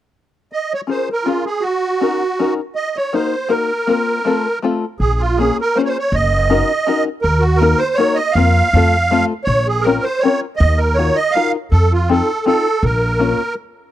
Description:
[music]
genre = musette waltz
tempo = 160 BPM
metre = 3/4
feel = swing 55% on 8ths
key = Bb minor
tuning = A4 = 440 Hz
[part]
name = musette accordion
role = melody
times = 0.5-13.5 s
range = F4 to F5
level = -17 LUFS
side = right 2 dB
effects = none
[part]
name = open-back banjo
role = accompaniment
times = 0.9-13.4 s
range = A3 to Bb4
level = -18 LUFS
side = left 5 dB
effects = none
[part]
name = upright bass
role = bass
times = 5.0-13.3 s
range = Gb1 to F2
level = -16 LUFS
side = equal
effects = none
[sound]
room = studio reverb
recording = dry, close 1970s-style studio recording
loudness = -14 LUFS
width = side -12 dB against mid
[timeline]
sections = 0.5-5.0 A section; 5.0-13.9 B section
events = stop 13.6-13.9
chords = 0.5 Bbm7; 1.6 Gb6; 2.8 Ebm; 3.9 Fsus4; 4.3 F; 5.0 Bbm7; 6.1 Gb6; 7.2 Ebm; 8.4 Fsus4; 8.7 F; 9.5 Bbmadd9; 10.6 Ebmadd9; 11.7 F7; 12.8 Bbm

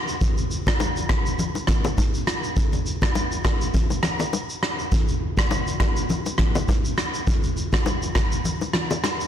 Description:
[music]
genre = afrobeats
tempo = 102 BPM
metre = 4/4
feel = swing 55% on 16ths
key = none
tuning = none
[part]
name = soft-mallet drum kit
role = drums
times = 0.1-9.3 s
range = kick drum, rim click, shaker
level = -21 LUFS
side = equal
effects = soft clipping on snare
[part]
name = congas and bongos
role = percussion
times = 0.2-9.2 s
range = none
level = -27 LUFS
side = left 4 dB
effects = none
[sound]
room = little or no reverb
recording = blown-out, overdriven recording, overdrive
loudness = -21 LUFS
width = side -10 dB against mid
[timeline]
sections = 0.0-9.3 A section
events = none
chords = none

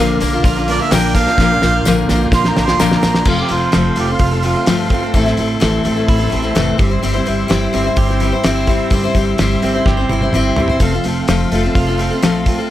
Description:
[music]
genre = folk rock and heartland rock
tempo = 127 BPM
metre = 4/4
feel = straight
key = unclear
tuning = A4 = 440 Hz
[part]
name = warm harmonica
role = second line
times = 0.0-4.7 s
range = F4 to C6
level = -19 LUFS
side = right 3 dB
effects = analog delay
[part]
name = picked steel-string acoustic guitar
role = accompaniment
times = 0.0-12.7 s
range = A2 to C5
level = -18 LUFS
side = left 5 dB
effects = none
[part]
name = mellow tonewheel organ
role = sustained chords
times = 0.0-12.7 s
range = G4 to C6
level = -26 LUFS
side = equal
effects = slow rotary speaker, chorus vibrato
[part]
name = electric guitar at the edge of break-up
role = riff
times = 0.0-12.7 s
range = F2 to G4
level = -21 LUFS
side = right 7 dB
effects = none
[part]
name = upright bass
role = bass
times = 0.0-12.6 s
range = F1 to Bb1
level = -20 LUFS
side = equal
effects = none
[part]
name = cloth-damped thuddy drum kit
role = drums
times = 0.2-12.6 s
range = crash cymbal, hi-hat, kick drum, snare drum, toms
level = -18 LUFS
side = equal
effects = none
[part]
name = tambourine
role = percussion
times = 0.2-3.1 s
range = none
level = -31 LUFS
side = left 8 dB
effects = none
[sound]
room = light reverb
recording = none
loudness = -12 LUFS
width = side -13 dB against mid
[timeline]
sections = 0.0-3.3 A section; 3.3-12.7 B section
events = harmonica solo 0.0-3.3; drum fill 1.4-3.3, 9.9-10.8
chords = 0.0 Bb; 3.3 F; 5.2 Am; 6.8 C/G; 10.8 F

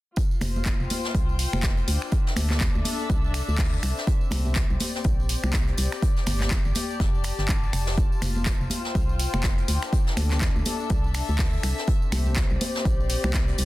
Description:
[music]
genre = piano house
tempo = 123 BPM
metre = 4/4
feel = swing 59% on 16ths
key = F major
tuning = A4 = 439 Hz
[part]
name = electronic kick drum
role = drums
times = 0.2-13.5 s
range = none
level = -24 LUFS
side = equal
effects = none
[part]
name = jazz brush drum kit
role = drums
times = 0.2-13.7 s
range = hi-hat, snare drum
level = -37 LUFS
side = left 2 dB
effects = high-pass filter on hats, soft clipping on snare, high-pass filter on snare, high-pass filter on room
[part]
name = tambourine and congas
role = percussion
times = 0.2-13.7 s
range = none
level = -34 LUFS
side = equal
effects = none
[part]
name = dark studio string section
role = texture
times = 0.2-13.7 s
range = C4 to A5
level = -33 LUFS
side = left 4 dB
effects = sidechain pumping
[part]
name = organ-like FM bass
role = bass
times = 0.4-13.7 s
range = F1 to D2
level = -26 LUFS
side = equal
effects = sidechain pumping
[part]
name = house drum kit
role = drums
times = 0.4-13.7 s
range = finger snaps, handclaps, hi-hat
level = -31 LUFS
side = equal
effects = soft clipping on snare
[sound]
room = studio reverb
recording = dense, heavily limited modern master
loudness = -22 LUFS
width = side -17 dB against mid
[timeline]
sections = 0.2-13.7 A section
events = none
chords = 0.2 F5; 1.9 Dm7; 3.8 C7; 6.0 F; 9.7 Dm7; 11.6 C7

